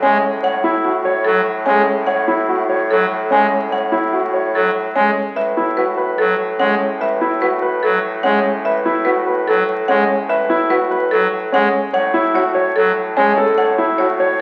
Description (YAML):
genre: classical, minimalist pattern music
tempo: 146 BPM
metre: 4/4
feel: straight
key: unclear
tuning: A4 = 440 Hz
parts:
  - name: buzzing marimba with hard mallets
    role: melody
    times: 0.0-14.3 s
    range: A4 to G#5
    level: -22 LUFS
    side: equal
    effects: none
  - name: pipe organ, trumpet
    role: accompaniment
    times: 0.0-13.3 s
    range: F#3 to G#3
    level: -22 LUFS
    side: equal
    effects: none
  - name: clear concert grand piano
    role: arpeggios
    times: 0.0-14.4 s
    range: C#4 to C#5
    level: -20 LUFS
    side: equal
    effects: none
  - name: clear bassoon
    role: bass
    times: 0.0-14.4 s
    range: A2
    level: -26 LUFS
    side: equal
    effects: none
room: wet recital hall reverb, RT60 1.6 s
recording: very old 78 rpm record, vinyl crackle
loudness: -17 LUFS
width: mono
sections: 0.0-14.4 A section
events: none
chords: 0.0 F#m/A; 5.4 Aadd9; 11.9 F#m/A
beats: 0.02 | 0.43 0.84 1.25 1.66 | 2.07 2.48 2.90 3.31 | 3.72 4.13 4.54 4.95 | 5.36 5.77 6.18 6.59 | 7.00 7.42 7.83 8.24 | 8.65 9.06 9.47 9.88 | 10.29 10.70 11.12 11.53 | 11.94 12.35 12.76 13.17 | 13.58 13.99 14.40